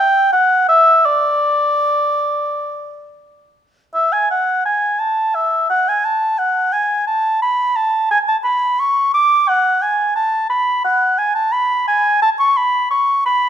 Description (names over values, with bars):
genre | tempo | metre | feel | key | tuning
classical, baroque-style fantasia for unaccompanied oboe | 87 BPM | 4/4 | rubato | D major, A major from 3.9 s | A4 = 440 Hz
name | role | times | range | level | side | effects
mellow oboe | solo | 0.0-13.5 s | D5 to D6 | -13 LUFS | equal | none
room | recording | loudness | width
moderate recital hall reverb, RT60 1.4 s | none | -13 LUFS | side -9 dB against mid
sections
0.0-3.9 A section; 3.9-13.5 A section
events
none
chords
none